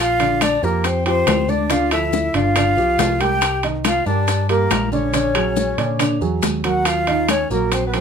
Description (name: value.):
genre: Afro-Cuban jazz.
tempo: 140 BPM.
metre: 4/4.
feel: straight.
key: Bb major.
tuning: A4 = 439 Hz.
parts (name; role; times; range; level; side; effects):
breathy concert flute; melody; 0.0-8.0 s; Bb4 to G5; -21 LUFS; left 1 dB; none.
warm tenor saxophone; second line; 0.0-8.0 s; Bb3 to G4; -25 LUFS; left 6 dB; none.
picked electric bass; bass; 0.0-8.0 s; G1 to Bb2; -23 LUFS; equal; none.
warm upright piano; accompaniment; 0.2-8.0 s; D3 to Eb5; -22 LUFS; right 4 dB; none.
bongos; percussion; 0.2-8.0 s; none; -26 LUFS; left 8 dB; none.
congas; percussion; 0.2-8.0 s; none; -27 LUFS; left 2 dB; none.
maracas; percussion; 0.2-8.0 s; none; -32 LUFS; left 3 dB; none.
timbales; percussion; 0.2-8.0 s; none; -24 LUFS; right 4 dB; none.
claves; percussion; 0.4-7.5 s; none; -32 LUFS; left 5 dB; none.
room: light reverb.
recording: minimal, uncompressed stereo recording.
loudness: -16 LUFS.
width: side -7 dB against mid.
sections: 0.0-8.0 A section.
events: drum fill 6.4-6.9.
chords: 0.0 Bb69; 1.7 Dmadd9; 2.6 G7; 3.4 Cm9; 5.1 Bb7alt; 6.9 Ebmadd9.